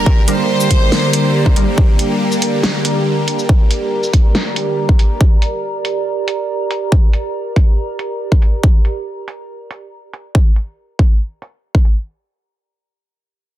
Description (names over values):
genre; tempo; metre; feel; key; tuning
heavy wobble dubstep; 140 BPM; 4/4; half-time; G minor; A4 = 442 Hz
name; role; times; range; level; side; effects
clear studio violin section; melody; 0.0-1.7 s; Bb4 to C5; -20 LUFS; right 2 dB; dub echo
supersaw pad; sustained chords; 0.0-5.2 s; D3 to G4; -18 LUFS; equal; phaser, sidechain pumping
warbly tape-like pad; texture; 0.0-8.6 s; G4 to Bb5; -22 LUFS; right 2 dB; chorus, built-in reverb, sidechain pumping
electronic kick drum; drums; 0.1-11.8 s; none; -11 LUFS; equal; none
orchestra-hit-like synth stab; stabs; 0.3-1.7 s; G3 to Bb4; -23 LUFS; right 1 dB; built-in reverb
dubstep drum kit; drums; 0.3-11.9 s; hi-hat, shaker, snare drum; -20 LUFS; equal; low-pass filter on hats, low-pass filter on perc, low-pass filter on snare, low-pass filter on cymbals
room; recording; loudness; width
light reverb, digital ambience; dense, heavily limited modern master; -13 LUFS; side -13 dB against mid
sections
0.0-12.1 A section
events
filter sweep on drum 0.0-12.1; filter sweep on synth stab 0.0-1.8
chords
0.0 Gm